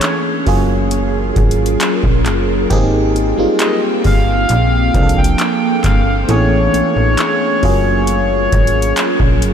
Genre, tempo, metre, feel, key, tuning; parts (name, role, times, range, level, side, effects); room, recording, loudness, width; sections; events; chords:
contemporary R&B; 67 BPM; 4/4; straight; A4 = 442 Hz
accordion; melody; 0.0-8.9 s; C5 to G5; -20 LUFS; left 1 dB; diffuse ambient delay
FM electric piano; accompaniment; 0.0-9.5 s; E3 to A4; -17 LUFS; right 2 dB; chorus, phaser
ethereal airy pad; sustained chords; 0.0-9.5 s; Gb3 to G5; -20 LUFS; equal; ensemble chorus, built-in reverb
booming analog drum machine; drums; 0.0-9.5 s; handclaps, hi-hat, kick drum; -18 LUFS; equal
slap-like FM bass; bass; 0.5-9.5 s; Gb1 to C2; -17 LUFS; equal
moderate huge ambient reverb, RT60 7.2 s; dreamy mix soaked in reverb; -12 LUFS; side -8 dB against mid
0.0-9.5 A section
0.5 Gbmaj9; 2.7 Abmaj9; 4.5 Bbmaj9; 6.3 Amaj9; 7.6 Gbmaj9